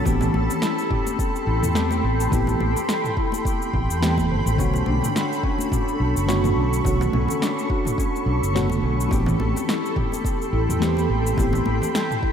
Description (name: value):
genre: sunset chillout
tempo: 106 BPM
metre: 4/4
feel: swing 56% on 16ths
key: unclear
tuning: A4 = 440 Hz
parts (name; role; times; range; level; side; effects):
- mellow FM electric piano; accompaniment; 0.0-12.3 s; D3 to C#5; -26 LUFS; moving between left 3 dB and right 4 dB; chorus, phaser, auto-pan, diffuse ambient delay
- shimmering ambient pad; sustained chords; 0.0-12.3 s; A4 to C#6; -27 LUFS; right 1 dB; chorus, built-in reverb
- concert harp; arpeggios; 0.0-12.3 s; C#4 to G5; -28 LUFS; left 3 dB; vintage 12-bit sampler grit, diffuse ambient delay
- fretless electric bass; bass; 0.1-11.8 s; F#1 to E2; -23 LUFS; equal; none
- deep house drum kit; drums; 0.1-12.2 s; cabasa, snare drum, toms; -29 LUFS; right 1 dB; overdrive
- electronic kick drum; drums; 0.1-12.3 s; none; -26 LUFS; equal; overdrive
- congas; percussion; 0.1-11.9 s; none; -32 LUFS; left 1 dB; none
room: moderate lush hall reverb, RT60 2.6 s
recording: dreamy mix soaked in reverb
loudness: -19 LUFS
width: side -8 dB against mid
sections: 0.0-12.3 A section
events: none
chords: 0.1 Am9; 4.6 Bm9; 9.1 Am9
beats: | 0.06 0.62 1.19 1.75 | 2.32 2.89 3.45 4.02 | 4.59 5.15 5.72 6.28 | 6.85 7.42 7.98 8.55 | 9.11 9.68 10.25 10.81 | 11.38 11.94